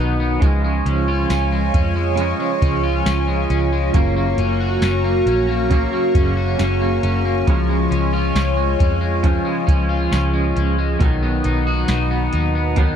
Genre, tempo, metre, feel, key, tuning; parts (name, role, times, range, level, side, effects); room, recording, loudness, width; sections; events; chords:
dream pop; 68 BPM; 4/4; straight; Db mixolydian; A4 = 436 Hz
twangy electric guitar; accompaniment; 0.0-13.0 s; Gb2 to Eb4; -25 LUFS; right 5 dB; tremolo, analog chorus
phased analog pad; sustained chords; 0.0-13.0 s; Eb4 to F6; -23 LUFS; equal; phaser, chorus
electric guitar at the edge of break-up; arpeggios; 0.0-13.0 s; Eb3 to Gb4; -23 LUFS; left 4 dB; lush chorus, tape echo
vintage muted picked electric bass; bass; 0.0-12.9 s; Gb1 to F2; -20 LUFS; equal
soft vintage rhythm box; drums; 0.4-13.0 s; hi-hat, kick drum, snare drum, tambourine; -19 LUFS; equal
light reverb, digital ambience; dark, warm production; -16 LUFS; side -8 dB against mid
0.0-13.0 A section
0.4 Db; 3.9 Gb; 7.5 Db; 11.0 Cb